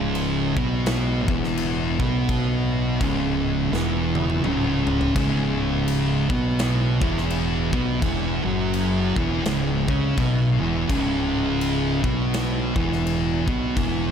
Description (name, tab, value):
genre	stoner and doom metal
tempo	84 BPM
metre	4/4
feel	swing 59% on 8ths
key	C# minor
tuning	A4 = 440 Hz
part	thick fuzz guitar	riff	0.0-14.1 s	C#2 to C#4	-26 LUFS	left 10 dB	distortion
part	thick fuzz guitar	riff	0.0-14.1 s	C#2 to C#4	-24 LUFS	right 8 dB	distortion
part	fuzz fingered electric bass	bass	0.0-14.1 s	C#1 to C#2	-27 LUFS	left 1 dB	overdrive
part	big rock drum kit	drums	0.1-14.0 s	crash cymbal, kick drum, snare drum, toms	-28 LUFS	left 1 dB	none
room	small room ambience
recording	none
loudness	-20 LUFS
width	side -8 dB against mid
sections	0.0-14.1 A section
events	drum fill 3.7-5.2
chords	0.0 C#m